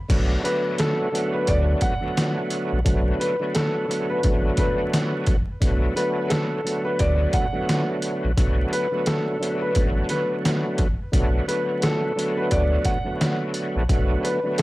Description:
hip hop, boom-bap hip-hop; 87 BPM; 4/4; swing 60% on 16ths; B minor; A4 = 440 Hz
overdriven tonewheel organ; accompaniment; 0.1-14.6 s; D3 to F#4; -25 LUFS; right 1 dB; chorus vibrato, slow rotary speaker, cassette tape
sub bass with octave; bass; 0.1-14.2 s; A1 to D2; -23 LUFS; equal
trip hop sampler-style drum kit; drums; 0.1-14.6 s; crash cymbal, hi-hat, kick drum, snare drum; -24 LUFS; equal; overdrive
warm upright piano; melody; 0.4-14.6 s; A4 to F#5; -26 LUFS; equal; digital delay
light reverb; vinyl crackle; -20 LUFS; side -18 dB against mid
0.1-14.6 A section
0.1 Bm7

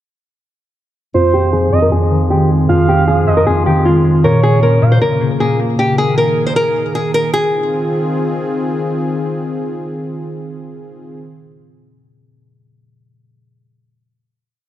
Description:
hip hop, trap; 155 BPM; 4/4; half-time; F minor; A4 = 440 Hz
nylon-string guitar; melody; 1.1-8.5 s; F4 to C5; -16 LUFS; left 1 dB; low-pass filter, ping-pong delay
gliding portamento lead; second line; 1.1-5.0 s; C5 to F5; -19 LUFS; right 4 dB; chorus, ping-pong delay
concert harp; accompaniment; 1.1-8.8 s; F2 to Bb3; -14 LUFS; left 1 dB; low-pass filter
warm analog pad; sustained chords; 1.1-11.2 s; Db3 to Bb4; -20 LUFS; equal; chorus, low-pass filter
moderate concert hall reverb, RT60 2.2 s; -12 LUFS; side -12 dB against mid
1.1-7.3 breakdown; 7.3-10.4 final chord
filter sweep 1.1-7.3
1.1 Fm7; 4.2 Bbm; 5.8 Ebsus4; 7.3 Fm7

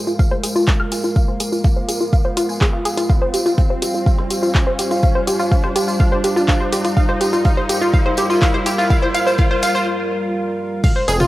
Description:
melodic techno; 124 BPM; 4/4; straight; A4 = 440 Hz
dark analog pad; sustained chords; 0.0-11.3 s; G3 to F5; -23 LUFS; right 1 dB; chorus, sidechain pumping, cassette tape
riser; sound effects; 0.3-9.9 s; -27 LUFS; equal
analog pluck; arpeggios; 0.1-11.3 s; F4 to F6; -19 LUFS; equal; chorus, sidechain pumping, cassette tape, analog delay
tambourine; percussion; 0.1-11.3 s; -29 LUFS; left 1 dB
electronic kick drum; drums; 0.2-10.9 s; -16 LUFS; equal; cassette tape
deep house drum kit; drums; 0.4-11.3 s; crash cymbal, handclaps, hi-hat, toms; -25 LUFS; equal; high-pass filter on hats, cassette tape, high-pass filter on snare, high-pass filter on toms, high-pass filter on cymbals, high-pass filter on room
gritty driven synth bass; bass; 11.1-11.2 s; F1; -17 LUFS; equal; distortion, sidechain pumping
moderate spring reverb, RT60 1.9 s, digital ambience; home recording on cassette; -15 LUFS; side -16 dB against mid
0.0-10.8 A section
build-up 0.0-10.8; filter sweep on synth arpeggio sound 0.0-10.8; riser 0.3-9.9; break 9.9-10.8
0.0 Fm; 3.1 Csus4

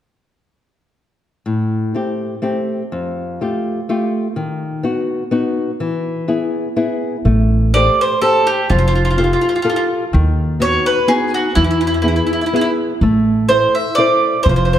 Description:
italian folk, Italian serenade; 125 BPM; 3/4; swing 55% on 8ths; A minor; A4 = 441 Hz
nylon-string guitar; accompaniment; 1.5-14.8 s; F2 to C5; -18 LUFS; left 2 dB
upright bass; bass; 7.2-14.8 s; F1 to E2; -16 LUFS; equal
bowl-back mandolin; melody; 7.7-14.8 s; E4 to E5; -16 LUFS; right 2 dB
moderate concert hall reverb, RT60 1.9 s; dark, warm production; -14 LUFS; side -10 dB against mid
1.4-7.3 A section; 7.3-14.8 B section
1.4 Am7; 2.9 Fadd9; 4.4 B/D#; 5.8 E; 7.3 Am7; 8.7 Fadd9; 10.1 B/D#; 11.6 E; 13.0 Am

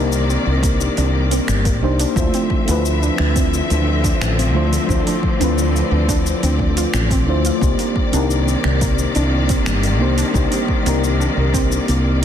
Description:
sunset chillout; 88 BPM; 4/4; straight; C dorian; A4 = 441 Hz
mellow FM electric piano; accompaniment; 0.0-12.2 s; A3 to C5; -22 LUFS; left 2 dB; chorus, auto-pan, digital delay
warm symphonic string section; sustained chords; 0.0-12.2 s; C3 to E5; -23 LUFS; left 2 dB
soft round pluck; arpeggios; 0.0-12.2 s; A3 to F4; -26 LUFS; right 3 dB; chorus, digital delay
woody fretless electric bass; bass; 0.0-12.2 s; G1 to D2; -18 LUFS; equal; analog chorus
smooth R&B drum kit; drums; 0.1-12.2 s; finger snaps, hi-hat, shaker; -27 LUFS; left 1 dB; soft clipping on snare
electronic kick drum; drums; 0.6-11.7 s; -20 LUFS; equal; overdrive
light reverb, digital ambience; dense, heavily limited modern master; -15 LUFS; side -9 dB against mid
0.0-12.2 A section
0.0 Cm9; 2.2 Dm9; 7.6 Cm9

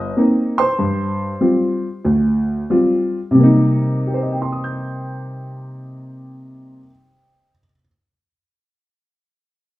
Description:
solo jazz; 87-100 BPM; 4/4; swing 68% on 8ths; C minor; A4 = 441 Hz
warm upright piano; solo; 0.0-7.9 s; D2 to G6; -16 LUFS; equal
wet club reverb, RT60 0.8 s; heard from further back in the room; -15 LUFS; side -16 dB against mid
0.0-3.4 A section; 3.4-6.1 B section
slowing down 0.0-3.4
0.0 Cm7; 0.8 G7sus4; 3.4 Cm7

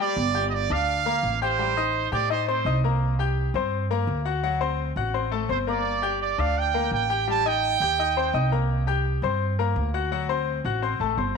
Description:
latin; 169 BPM; 4/4; straight; G minor; A4 = 440 Hz
bright trumpet section; melody; 0.0-2.8, 5.5-8.5 s; C5 to A5; -25 LUFS; right 11 dB; tape echo
bright concert grand piano; accompaniment; 0.0-11.3 s; F#3 to G6; -26 LUFS; left 10 dB
upright bass; bass; 0.2-11.4 s; G1 to A2; -27 LUFS; right 1 dB
moderate echo chamber reverb, RT60 1.2 s, small room ambience; 1960s-style stereo with parts hard left and right; -22 LUFS; side -5 dB against mid
0.2-11.4 A section
break 0.0
0.2 Gm7; 1.6 Am7b5; 3.0 C5; 4.4 D7; 5.9 Gmadd9; 7.3 Am7b5; 8.7 C5; 10.1 D7

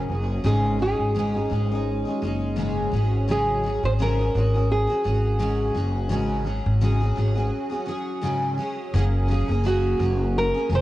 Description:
acoustic pop; 85 BPM; 4/4; swing 55% on 16ths; A4 = 440 Hz
nylon-string guitar; melody; 0.0-10.8 s; Gb4 to C5; -26 LUFS; right 1 dB; analog delay
picked steel-string acoustic guitar; accompaniment; 0.0-10.8 s; Ab2 to Ab4; -26 LUFS; equal; double-tracked left and right, cassette tape
upright bass; bass; 0.0-10.8 s; F1 to Ab1; -23 LUFS; equal
light reverb, small room ambience; home recording on cassette; -21 LUFS; side -15 dB against mid
0.0-8.9 A section; 8.9-10.8 B section
break 7.5-8.9
0.5 Absus4; 2.9 Gbsus2; 8.9 Gbadd9

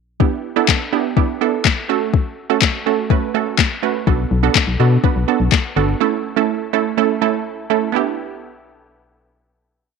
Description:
dance-pop; 124 BPM; 4/4; straight; E dorian; A4 = 440 Hz
wide unison pluck; accompaniment; 0.2-10.0 s; A3 to B4; -18 LUFS; right 12 dB; sidechain pumping
smooth R&B drum kit; drums; 0.2-5.6 s; handclaps, kick drum, snare drum; -16 LUFS; left 6 dB; overdrive
organ-like FM bass; bass; 4.1-5.9 s; G1 to B2; -16 LUFS; left 3 dB; sidechain pumping
moderate spring reverb, RT60 2.0 s, digital ambience; 1960s-style stereo with parts hard left and right, faint mains hum; -15 LUFS; side -5 dB against mid
0.2-7.9 verse; 7.9-10.0 final chord
0.2 Em7; 1.9 F#m; 4.1 Bm7; 6.0 A; 7.9 Em7

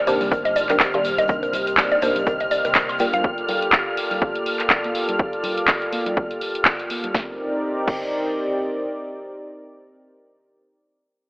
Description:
deep house; 123 BPM; 4/4; swing 56% on 16ths; C minor; A4 = 441 Hz
warm analog pad; sustained chords; 0.0-10.4 s; Eb3 to Eb5; -26 LUFS; equal; chorus, sidechain pumping
soft string machine; texture; 0.0-7.2 s; F6; -28 LUFS; equal; ensemble chorus, sidechain pumping
mallet-like synth pluck; arpeggios; 0.1-3.2 s; Bb4 to C6; -23 LUFS; equal; chorus, sidechain pumping, tape echo
filtered dub chord stab; stabs; 0.1-3.2 s; C3 to G4; -25 LUFS; equal; phaser, analog chorus, sidechain pumping, tape echo
overdriven fingered electric bass; bass; 0.1-3.2 s; G1 to C2; -37 LUFS; equal; sidechain pumping
house drum kit; drums; 0.1-8.0 s; crash cymbal, handclaps, hi-hat, snare drum; -22 LUFS; equal; small room ambience
jazz brush drum kit; drums; 0.1-3.1 s; hi-hat, snare drum; -38 LUFS; equal
tube shaker; percussion; 0.1-3.2 s; -45 LUFS; equal
congas; percussion; 0.2-7.1 s; -35 LUFS; equal
electronic kick drum; drums; 0.3-8.0 s; -24 LUFS; equal; small room ambience
moderate lush hall reverb, RT60 2.2 s; telephone sound; -19 LUFS; side -28 dB against mid
0.0-7.1 A section; 7.1-11.0 B section
0.0 Cm9; 3.0 Gm9; 7.1 Cm9

